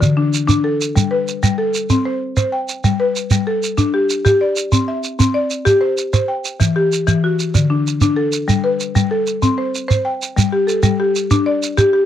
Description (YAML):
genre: southern african traditional, mbira-style interlocking cycle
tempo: 128 BPM (dotted quarters)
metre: 12/8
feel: straight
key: G major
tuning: A4 = 440 Hz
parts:
  - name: buzzing marimba with medium hard mallets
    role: arpeggios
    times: 0.0-12.1 s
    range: D3 to G5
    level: -16 LUFS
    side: left 2 dB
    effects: none
  - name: shekere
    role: percussion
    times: 0.0-11.9 s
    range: none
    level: -16 LUFS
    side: right 3 dB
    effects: none
room: little or no reverb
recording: dry, close 1970s-style studio recording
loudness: -14 LUFS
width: side -10 dB against mid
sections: 0.0-10.4 A section; 10.4-12.1 B section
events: none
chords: 0.0 D; 1.0 G; 1.9 C5; 2.8 G; 4.7 C; 6.6 Em; 7.5 D; 8.5 G; 9.4 C5; 10.4 G5